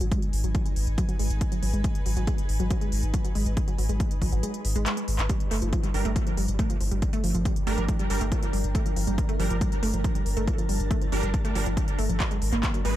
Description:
driving peak-time techno; 139 BPM; 4/4; straight; A4 = 440 Hz
wide unison pluck; riff; 0.0-12.9 s; F3 to Bb3; -31 LUFS; right 1 dB; vintage 12-bit sampler grit, sidechain pumping, dub echo
saturated sub bass; bass; 0.0-13.0 s; G1 to Ab1; -27 LUFS; equal; tube saturation, sidechain pumping, low-pass filter
techno drum kit; drums; 0.0-12.9 s; handclaps, hi-hat; -35 LUFS; left 1 dB; overdrive, dub echo
granular cloud pad; texture; 0.0-13.0 s; D4 to A5; -38 LUFS; equal; built-in reverb, sidechain pumping
electronic kick drum; drums; 0.1-12.7 s; -26 LUFS; equal; overdrive
rave stab; stabs; 5.9-13.0 s; G3 to Cb5; -34 LUFS; right 4 dB; chorus, built-in reverb, sidechain pumping, dub echo
digital ambience; echo-heavy mix; -24 LUFS; side -13 dB against mid
0.0-13.0 A section
fade-in on ambient pad 0.0-13.0; filter sweep on synth arpeggio sound 0.0-13.0; kick drops out 4.4-5.3; drum fill 4.9-5.3
0.0 Abm; 5.3 Gm; 12.2 Abm

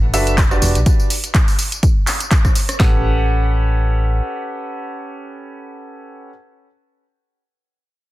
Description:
piano house; 124 BPM; 4/4; swing 55% on 16ths; A mixolydian; A4 = 440 Hz
solid FM bass; bass; 0.0-4.2 s; E1 to B1; -17 LUFS; equal; sidechain pumping
bright upright piano; riff; 0.1-6.3 s; C#4 to F#5; -23 LUFS; right 1 dB; sidechain pumping, digital delay
house drum kit; drums; 0.1-2.8 s; handclaps, hi-hat, rim click, tambourine; -20 LUFS; equal; overdrive
punchy analog drum machine; drums; 0.4-2.9 s; handclaps, kick drum, snare drum; -15 LUFS; equal
little or no reverb; dense, heavily limited modern master; -14 LUFS; side -17 dB against mid
0.0-2.8 A section; 2.8-6.7 B section
drop 0.0-2.8
0.0 Bm7; 0.6 Em9; 1.8 N.C.; 2.8 A13

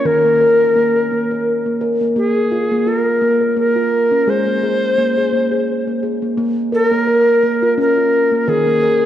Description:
world meditative, meditative tuned percussion; 86 BPM; 3/4; swing 55% on 16ths; Bb minor; A4 = 441 Hz
bright reedy Native American-style cedar flute; melody; 0.0-9.1 s; Ab4 to C5; -15 LUFS; equal
steel tongue drum; arpeggios; 0.0-9.1 s; Eb3 to Bb4; -16 LUFS; left 1 dB
wet echo chamber reverb, RT60 2.7 s; worn, warbling old tape, cassette tape, warbly pitch drift; -13 LUFS; side -11 dB against mid
0.0-6.4 A section; 6.4-9.1 B section
0.1 Eb5; 2.2 Bb5; 4.3 Ab; 6.4 Bb5; 8.5 Eb5

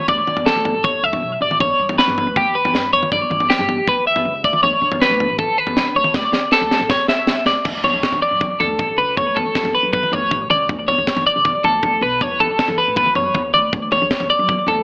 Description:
math rock and midwest emo; 158 BPM; 4/4; straight; D major; A4 = 441 Hz
twelve-string electric guitar; arpeggios; 0.0-14.8 s; G4 to E5; -16 LUFS; equal; harmonic tremolo, analog delay
upright bass; bass; 0.1-14.8 s; G1 to E3; -28 LUFS; equal
crisp fusion drum kit; drums; 0.1-14.8 s; crash cymbal, kick drum, snare drum, toms; -21 LUFS; equal
moderate studio reverb, RT60 0.5 s; AM radio sound; -14 LUFS; side -26 dB against mid
0.0-7.7 A section; 7.7-14.8 B section
drum fill 6.1-7.7
0.0 D5; 1.6 G; 4.4 D5; 7.7 Dmaj7(no3); 10.7 Bm9; 12.2 Esus2; 13.7 Dmaj7

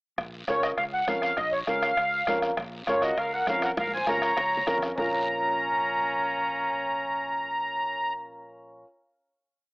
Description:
latin, cumbia; 200 BPM; 4/4; straight; Bb minor; A4 = 441 Hz
fingered electric bass; bass; 0.2-8.8 s; Bb1 to F2; -44 LUFS; equal
bombo; percussion; 0.2-5.0 s; -33 LUFS; equal
congas; percussion; 0.2-5.0 s; -40 LUFS; equal
guiro; percussion; 0.2-5.0 s; -43 LUFS; equal
timbales; percussion; 0.2-5.0 s; -42 LUFS; equal
accordion; melody; 0.5-8.1 s; Db5 to Bb5; -26 LUFS; equal; light tremolo tuning
warm upright piano; accompaniment; 0.5-8.8 s; Db4 to Bb4; -32 LUFS; equal; cassette tape
warm trumpet; second line; 2.9-8.1 s; Db4 to Db5; -34 LUFS; equal; cassette tape, tape echo
wet spring reverb, RT60 1.2 s, small room ambience; home recording on cassette, AM radio sound; -24 LUFS; side -36 dB against mid
0.2-5.0 A section; 5.0-7.4 final chord
drum fill 3.8-5.0
0.2 Bbm

